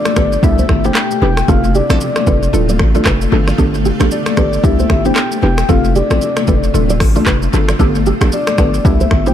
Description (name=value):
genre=afrobeats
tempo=114 BPM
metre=4/4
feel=swing 58% on 16ths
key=G mixolydian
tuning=A4 = 441 Hz
part: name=soft octave-layered synth lead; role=melody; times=0.0-9.3 s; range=D5 to G5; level=-20 LUFS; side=left 2 dB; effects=chorus, dub echo
part: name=mallet-like synth pluck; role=accompaniment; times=0.0-9.3 s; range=A3 to A4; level=-19 LUFS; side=left 1 dB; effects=chorus, phaser, dub echo
part: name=granular cloud pad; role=sustained chords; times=0.0-9.3 s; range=B2 to G4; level=-23 LUFS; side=equal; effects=built-in reverb
part: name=afro-pop drum kit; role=drums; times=0.1-9.3 s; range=finger snaps, handclaps, hi-hat, kick drum, rim click, shaker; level=-17 LUFS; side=equal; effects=dub echo
part: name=congas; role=percussion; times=0.1-9.3 s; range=none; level=-23 LUFS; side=left 7 dB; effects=dub echo
part: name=nylon-string guitar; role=riff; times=0.2-9.3 s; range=G4 to D5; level=-23 LUFS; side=right 5 dB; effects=dub echo
part: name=hard-hitting 808-style bass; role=bass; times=0.2-9.3 s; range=D1 to C2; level=-15 LUFS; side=equal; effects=none
room=digital ambience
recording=echo-heavy mix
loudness=-11 LUFS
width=side -10 dB against mid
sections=0.0-9.3 A section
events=none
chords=0.4 Cmaj7; 1.5 F; 2.5 Dm; 3.6 Gadd9; 4.6 Cmaj7; 5.7 F; 6.7 Dm; 7.8 Gadd9